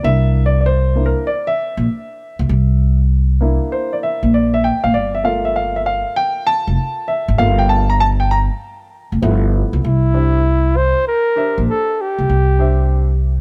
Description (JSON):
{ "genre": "hip hop, jazz-hop", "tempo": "98 BPM", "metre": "4/4", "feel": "swing 66% on 16ths", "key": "unclear", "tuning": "A4 = 440 Hz", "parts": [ { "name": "dark grand piano", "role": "accompaniment", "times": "0.0-13.1 s", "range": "F3 to Bb5", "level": "-21 LUFS", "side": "equal", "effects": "none" }, { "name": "upright bass", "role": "bass", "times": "0.0-13.4 s", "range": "F1 to C#2", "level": "-17 LUFS", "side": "equal", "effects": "none" }, { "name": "breathy flugelhorn", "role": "melody", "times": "9.8-13.2 s", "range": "E4 to C5", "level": "-20 LUFS", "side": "equal", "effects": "none" } ], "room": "small room ambience", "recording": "none", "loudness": "-16 LUFS", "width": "mono", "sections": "0.0-9.8 A section; 9.8-13.4 B section", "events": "grand piano solo 0.0-9.8", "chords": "0.0 C7; 4.9 Gm9; 9.2 G13; 9.8 C", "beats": "| 0.04 0.65 1.26 1.88 | 2.49 3.10 3.71 4.33 | 4.94 5.55 6.16 6.78 | 7.39 8.00 8.61 9.22 | 9.84 10.45 11.06 11.67 | 12.29 12.90" }